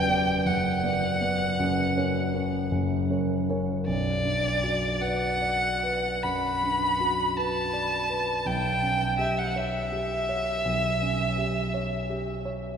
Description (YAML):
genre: classical, romantic duo for violin and grand piano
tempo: 48-56 BPM (dotted quarters)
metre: 12/8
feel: rubato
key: B minor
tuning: A4 = 440 Hz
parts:
  - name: rich violin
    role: melody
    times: 0.0-12.5 s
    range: D5 to B5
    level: -27 LUFS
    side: equal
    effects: none
  - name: dark concert grand piano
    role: accompaniment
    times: 0.0-12.8 s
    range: F#1 to D5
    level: -27 LUFS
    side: equal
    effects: none
room: wet cathedral reverb, RT60 4.2 s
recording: recorded in a church or concert hall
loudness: -24 LUFS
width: side -7 dB against mid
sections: 0.0-3.9 A section; 3.9-12.8 B section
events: none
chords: 0.0 Bm/F#; 1.6 F#; 3.9 Bm; 8.5 C#m7b5/B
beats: 0.46 1.59 2.71 | 3.87 5.02 6.24 7.36 | 8.46 9.56 10.65 11.73